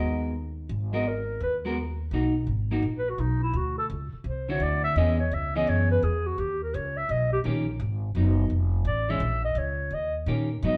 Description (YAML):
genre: jazz, small-group swing and bop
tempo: 169 BPM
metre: 4/4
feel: swing 64% on 8ths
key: G# minor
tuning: A4 = 440 Hz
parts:
  - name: breathy clarinet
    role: melody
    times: 0.0-10.8 s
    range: D#4 to E5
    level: -31 LUFS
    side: equal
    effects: none
  - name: vintage hollow-body jazz guitar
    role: accompaniment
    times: 0.0-10.8 s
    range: D3 to A#4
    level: -32 LUFS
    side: equal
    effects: none
  - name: upright bass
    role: bass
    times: 0.0-10.8 s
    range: F1 to A#2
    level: -30 LUFS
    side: equal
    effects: none
room: wet stone room reverb, RT60 1.0 s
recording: band playing live in one room, nothing above 10.4 kHz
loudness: -27 LUFS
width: mono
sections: 0.0-2.1 A section; 2.1-10.8 B section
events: none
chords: 0.0 G#m9; 3.5 D9; 5.0 E6; 6.4 D#7; 7.8 G#m7; 8.5 F; 9.2 A#dim; 9.9 D#7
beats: 0.35 | 0.70 1.06 1.42 1.77 | 2.12 2.48 2.83 3.19 | 3.54 3.90 4.25 4.61 | 4.96 5.32 5.67 6.03 | 6.38 6.74 7.09 7.45 | 7.80 8.16 8.51 8.87 | 9.22 9.57 9.93 10.28 | 10.64